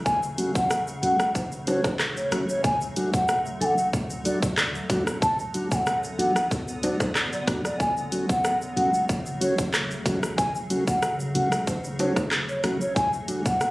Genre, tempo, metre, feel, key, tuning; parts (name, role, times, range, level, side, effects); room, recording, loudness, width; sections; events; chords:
dancehall; 93 BPM; 4/4; straight; F# minor; A4 = 441 Hz
granular cloud pad; sustained chords; 0.0-13.7 s; C#3 to B3; -34 LUFS; equal; built-in reverb, sidechain pumping
mellow hollow wooden flute; melody; 0.1-13.7 s; C#5 to A5; -26 LUFS; equal; ping-pong delay
punchy sub bass; bass; 0.1-13.6 s; F#1 to E2; -35 LUFS; equal
island pop drum kit; drums; 0.1-13.7 s; handclaps, hi-hat, kick drum, rim click, shaker; -27 LUFS; equal
egg shaker and timbales; percussion; 0.1-13.7 s; -37 LUFS; right 1 dB
mellow tonewheel organ; accompaniment; 0.4-13.4 s; F#3 to A4; -29 LUFS; equal; slow rotary speaker
light reverb; recorded on a phone in the room, club reverb; -22 LUFS; side -21 dB against mid
0.0-13.7 A section
0.0 F#m; 2.6 D; 7.8 F#m; 13.0 D